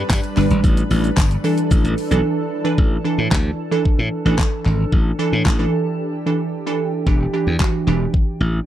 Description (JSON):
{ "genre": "dance-pop", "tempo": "112 BPM", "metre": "4/4", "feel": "straight", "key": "unclear", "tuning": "A4 = 442 Hz", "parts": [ { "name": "glassy wavetable pluck", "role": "accompaniment", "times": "0.0-8.5 s", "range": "E3 to B4", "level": "-21 LUFS", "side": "right 3 dB", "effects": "chorus, sidechain pumping" }, { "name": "shimmering ambient pad", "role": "sustained chords", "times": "0.0-7.0 s", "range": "E3 to B4", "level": "-27 LUFS", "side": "left 1 dB", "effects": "chorus, built-in reverb, sidechain pumping" }, { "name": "glassy slap bass", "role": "bass", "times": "0.1-8.6 s", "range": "E1 to A2", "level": "-19 LUFS", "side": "equal", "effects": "sidechain pumping" }, { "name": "pop drum kit", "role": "drums", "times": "0.1-8.3 s", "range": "handclaps, hi-hat, kick drum, shaker, snare drum", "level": "-17 LUFS", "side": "equal", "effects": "overdrive" }, { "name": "tambourine", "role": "percussion", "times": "0.1-2.1 s", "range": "none", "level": "-40 LUFS", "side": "left 14 dB", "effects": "none" } ], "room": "light reverb", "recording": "dry, close 1970s-style studio recording", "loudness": "-16 LUFS", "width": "side -12 dB against mid", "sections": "0.0-2.8 A section; 2.8-7.1 B section; 7.1-8.7 C section", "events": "break 2.2-2.8, 6.0-7.1", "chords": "0.0 G; 0.6 Asus4; 7.1 Em7" }